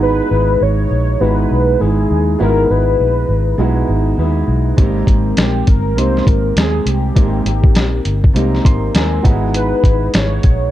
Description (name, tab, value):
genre	indie pop, bedroom pop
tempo	101 BPM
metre	4/4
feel	swing 60% on 16ths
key	unclear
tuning	A4 = 441 Hz
part	warm velvety synth lead	melody	0.0-10.7 s	G4 to Db5	-19 LUFS	left 1 dB	wide subtle chorus
part	mellow electric guitar	accompaniment	0.0-10.7 s	G#3 to B4	-20 LUFS	left 1 dB	lush chorus, warbly pitch drift
part	warm upright piano	accompaniment	0.0-10.7 s	Gb3 to C6	-22 LUFS	right 4 dB	none
part	vintage muted fingered electric bass	bass	0.0-10.7 s	G1 to D#2	-16 LUFS	equal	none
part	lo-fi sampler-style drum kit	drums	4.8-10.6 s	hi-hat, kick drum, snare drum	-13 LUFS	equal	none
room	little or no reverb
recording	dark, warm production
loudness	-12 LUFS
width	side -13 dB against mid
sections	0.0-10.7 A section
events	upright piano fill 8.4-9.5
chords	0.0 Emaj7/G#; 4.8 Abmaj9; 9.3 Emaj7/G#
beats	| 0.02 0.62 1.21 1.81 | 2.40 3.00 3.59 4.19 | 4.79 5.38 5.98 6.57 | 7.17 7.76 8.36 8.95 | 9.55 10.14